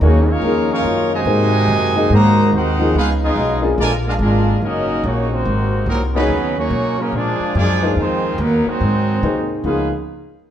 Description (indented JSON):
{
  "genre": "jazz, big band swing",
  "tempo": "143 BPM",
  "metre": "4/4",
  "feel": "swing 65% on 8ths",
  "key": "unclear",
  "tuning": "A4 = 440 Hz",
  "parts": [
    { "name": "clear trumpet section", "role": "melody", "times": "0.0-9.9 s", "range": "Gb3 to Bb5", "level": "-21 LUFS", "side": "right 1 dB", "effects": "none" },
    { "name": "clear trombone section", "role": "second line", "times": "0.0-9.9 s", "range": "C3 to Gb4", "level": "-21 LUFS", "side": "equal", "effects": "none" },
    { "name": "warm upright piano", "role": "accompaniment", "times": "0.0-9.9 s", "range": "F3 to Eb5", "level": "-21 LUFS", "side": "left 2 dB", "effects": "none" },
    { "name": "bright trombone section", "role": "sustained chords", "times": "0.0-6.3 s", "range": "C3 to Gb4", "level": "-27 LUFS", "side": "left 2 dB", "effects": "none" },
    { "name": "upright bass", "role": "bass", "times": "0.0-9.9 s", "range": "Gb1 to C3", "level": "-18 LUFS", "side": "equal", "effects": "none" }
  ],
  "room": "wet large studio reverb, RT60 1.2 s",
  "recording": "heard from further back in the room",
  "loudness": "-14 LUFS",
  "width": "side -10 dB against mid",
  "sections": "0.0-6.3 A section; 6.3-9.6 B section",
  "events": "none",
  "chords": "0.0 Ebm7; 1.3 Ab9; 2.9 Db9; 3.8 Bb7; 4.6 Ebm7; 5.5 Ab9; 6.3 Ebm7; 7.1 Bb7; 8.0 Fm7; 8.8 Ab7; 9.6 Db13"
}